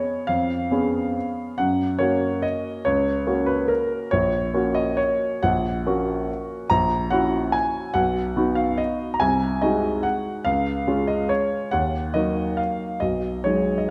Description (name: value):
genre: classical, piano waltz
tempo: 141 BPM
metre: 3/4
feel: uneven beats, rubato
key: F# major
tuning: A4 = 442 Hz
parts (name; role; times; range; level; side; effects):
- warm grand piano; solo; 0.0-13.9 s; A#1 to A#5; -23 LUFS; equal; none
room: moderate concert hall reverb, RT60 1.8 s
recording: none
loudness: -23 LUFS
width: mono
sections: 0.0-13.9 A section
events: none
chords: 0.0 C#7/E#; 1.6 F#; 4.1 F#/A#; 6.7 F#7/A#; 8.0 B; 9.2 G#7/B#; 10.5 C#; 11.7 D#m; 13.0 G#m7/B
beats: | 0.29 0.72 1.16 | 1.58 2.00 2.43 | 2.85 3.27 3.70 | 4.12 4.54 4.98 | 5.43 5.86 6.29 | 6.71 7.12 7.54 | 7.95 8.36 8.79 | 9.21 9.62 10.04 | 10.46 10.87 11.29 | 11.72 12.14 12.58 | 13.01 13.44 13.89